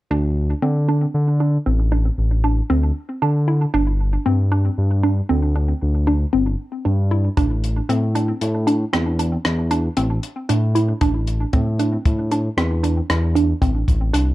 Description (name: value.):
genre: progressive instrumental, band music in an uneven meter.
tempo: 116 BPM.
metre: 7/4.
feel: straight.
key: unclear.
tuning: A4 = 440 Hz.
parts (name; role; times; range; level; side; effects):
hollow square pluck; arpeggios; 0.1-14.3 s; C4 to E4; -22 LUFS; right 1 dB; chorus, phaser, analog delay.
smooth synth bass; bass; 0.1-14.3 s; G1 to D3; -18 LUFS; equal; none.
compact cocktail drum kit; drums; 7.4-14.3 s; hi-hat, kick drum, rim click; -22 LUFS; equal; none.
room: light reverb.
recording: dark, warm production.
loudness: -17 LUFS.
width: side -16 dB against mid.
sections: 0.1-14.3 A section.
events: none.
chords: 0.1 D5; 3.7 G5; 7.4 Am.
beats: | 0.11 0.62 1.14 1.66 2.18 2.70 3.22 | 3.74 4.26 4.78 5.29 5.81 6.33 6.85 | 7.37 7.89 8.41 8.93 9.45 9.97 10.49 | 11.01 11.53 12.05 12.58 13.10 13.62 14.14.